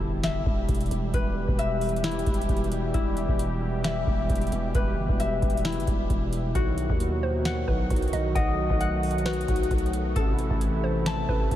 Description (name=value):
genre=hip hop, trap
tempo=133 BPM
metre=4/4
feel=half-time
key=E harmonic minor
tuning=A4 = 440 Hz
part: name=warm analog pad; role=sustained chords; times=0.0-11.6 s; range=B2 to G4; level=-31 LUFS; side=right 2 dB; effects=chorus
part: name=concert harp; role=arpeggios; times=0.0-11.6 s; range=E4 to A5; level=-31 LUFS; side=left 4 dB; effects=diffuse ambient delay
part: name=growling 808-style bass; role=bass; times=0.0-11.6 s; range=E1 to D#2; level=-29 LUFS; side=equal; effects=none
part: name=impact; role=sound effects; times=0.0-1.1 s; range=none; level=barely audible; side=none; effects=none
part: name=booming analog drum machine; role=drums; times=0.2-11.6 s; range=hi-hat, kick drum, snare drum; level=-27 LUFS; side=equal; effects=none
part: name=hollow square pluck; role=second line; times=7.2-11.6 s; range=B4 to F#5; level=-34 LUFS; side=right 2 dB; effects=chorus, diffuse ambient delay
room=moderate huge ambient reverb, RT60 8.6 s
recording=dreamy mix soaked in reverb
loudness=-23 LUFS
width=side -12 dB against mid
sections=0.0-11.6 A section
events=impact 0.0-1.1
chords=0.0 Em; 6.6 B; 10.2 Am